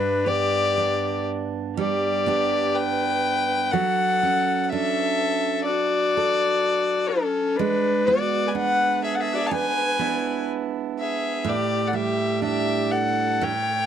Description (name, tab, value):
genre	celtic folk, Celtic slow air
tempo	62 BPM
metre	4/4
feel	rubato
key	D major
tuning	A4 = 441 Hz
part	dark fiddle	melody	0.0-13.9 s	A4 to A5	-23 LUFS	left 2 dB	none
part	bright viola	second line	0.0-13.9 s	C#4 to C#5	-28 LUFS	left 8 dB	none
part	picked steel-string acoustic guitar	accompaniment	0.0-13.9 s	G2 to A4	-26 LUFS	right 10 dB	none
room	little or no reverb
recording	dry, close 1970s-style studio recording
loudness	-20 LUFS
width	side -9 dB against mid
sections	0.0-13.9 A section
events	none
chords	0.0 G; 3.7 Dmaj7/F#; 7.6 E7/G#; 11.5 A7sus4